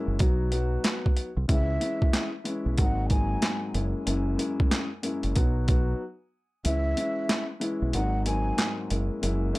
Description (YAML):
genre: hip hop, boom-bap hip-hop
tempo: 93 BPM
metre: 4/4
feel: swing 62% on 16ths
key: C# dorian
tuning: A4 = 439 Hz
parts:
  - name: dark grand piano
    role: accompaniment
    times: 0.0-9.6 s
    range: F#2 to F#4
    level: -30 LUFS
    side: left 2 dB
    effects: cassette tape, high-pass filter, low-pass filter
  - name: deep dub fingered electric bass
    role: bass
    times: 0.1-9.5 s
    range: F#1 to C#2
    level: -27 LUFS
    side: equal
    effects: tube saturation
  - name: boom bap sampler-style drum kit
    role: drums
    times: 0.2-9.6 s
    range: handclaps, hi-hat, kick drum, snare drum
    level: -26 LUFS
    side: equal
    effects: overdrive
  - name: breathy mellow concert flute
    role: melody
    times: 1.5-8.8 s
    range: E5 to G#5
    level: -34 LUFS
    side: equal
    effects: high-pass filter, low-pass filter, tape echo
room: little or no reverb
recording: dry, gritty hardware recording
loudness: -24 LUFS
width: side -20 dB against mid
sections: 0.0-9.6 A section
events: break 6.0-6.7; kick muted 6.7-9.6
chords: 0.2 B; 1.5 C#m; 2.8 G#7; 3.7 F#7; 5.4 B; 6.7 C#m; 7.9 G#7; 8.9 F#7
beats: 0.20 0.84 | 1.49 2.13 2.78 3.42 | 4.07 4.71 5.36 6.00 | 6.65 7.29 7.94 8.59 | 9.23